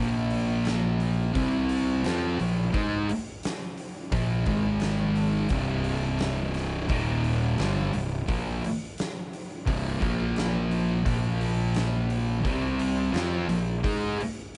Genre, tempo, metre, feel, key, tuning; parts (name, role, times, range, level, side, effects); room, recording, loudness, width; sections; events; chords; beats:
stoner and doom metal; 86 BPM; 4/4; straight; A4 = 440 Hz
thick fuzz guitar; riff; 0.0-14.2 s; C2 to Ab4; -31 LUFS; equal; distortion
thick fuzz guitar; riff; 0.0-14.2 s; C2 to Ab4; -32 LUFS; equal; distortion
fuzz fingered electric bass; bass; 0.0-14.2 s; C1 to Ab2; -34 LUFS; equal; overdrive
oversized low-tuned drum kit; drums; 0.3-14.6 s; hi-hat, kick drum, snare drum; -35 LUFS; equal
studio reverb; dark, warm production, nothing above 10.6 kHz; -27 LUFS; mono
0.0-14.6 A section
0.0 Bb5; 1.4 C5; 2.0 Bb5; 4.5 Ab5; 5.5 C5; 6.9 Eb5; 7.6 C5; 10.0 Bb5; 12.4 C5; 13.1 Bb5
0.66 1.35 2.04 | 2.74 3.43 4.12 4.82 | 5.51 6.20 6.90 7.59 | 8.28 8.98 9.67 10.37 | 11.06 11.75 12.45 13.14 | 13.84 14.53